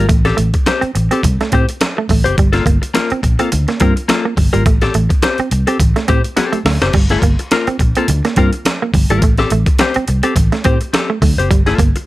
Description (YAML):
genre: funk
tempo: 105 BPM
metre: 4/4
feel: swing 56% on 16ths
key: unclear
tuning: A4 = 437 Hz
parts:
  - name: clean electric guitar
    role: accompaniment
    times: 0.0-12.0 s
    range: Bb3 to C5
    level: -18 LUFS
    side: left 5 dB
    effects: plate reverb
  - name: semi-hollow electric guitar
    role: riff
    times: 0.0-11.9 s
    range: G3 to C4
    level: -19 LUFS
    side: right 5 dB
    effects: warbly pitch drift
  - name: vintage muted fingered electric bass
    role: bass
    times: 0.0-11.9 s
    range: F#1 to A2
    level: -16 LUFS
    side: equal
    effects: none
  - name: breakbeat sampler-style drum kit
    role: drums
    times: 0.1-12.1 s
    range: crash cymbal, hi-hat, kick drum, snare drum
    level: -15 LUFS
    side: equal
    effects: none
  - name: congas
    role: percussion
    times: 0.4-11.9 s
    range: none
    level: -24 LUFS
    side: right 5 dB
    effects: none
room: little or no reverb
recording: none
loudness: -12 LUFS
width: side -17 dB against mid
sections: 0.0-12.1 A section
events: drum fill 6.4-6.9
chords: 0.1 Am7; 2.4 Gm9; 4.7 Am7; 6.9 Gm9; 9.2 Am7; 11.5 Gm9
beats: | 0.09 0.66 1.23 1.80 | 2.38 2.95 3.52 4.09 | 4.66 5.23 5.80 6.37 | 6.94 7.51 8.08 8.65 | 9.22 9.79 10.37 10.94 | 11.51